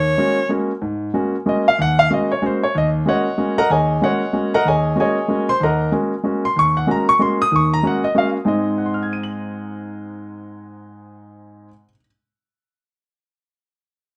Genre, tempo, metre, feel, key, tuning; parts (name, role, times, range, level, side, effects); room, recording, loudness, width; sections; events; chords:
jazz; 188 BPM; 3/4; swing 61% on 8ths; Ab mixolydian; A4 = 439 Hz
growling soprano saxophone; melody; 0.0-0.5 s; Db5; -21 LUFS; equal
warm concert grand piano; accompaniment; 0.0-12.1 s; Eb2 to Gb7; -19 LUFS; equal
moderate studio reverb, RT60 0.7 s; -18 LUFS; mono
0.8-8.5 A section; 8.5-10.4 B section
0.0 Ab9sus4; 8.5 Ab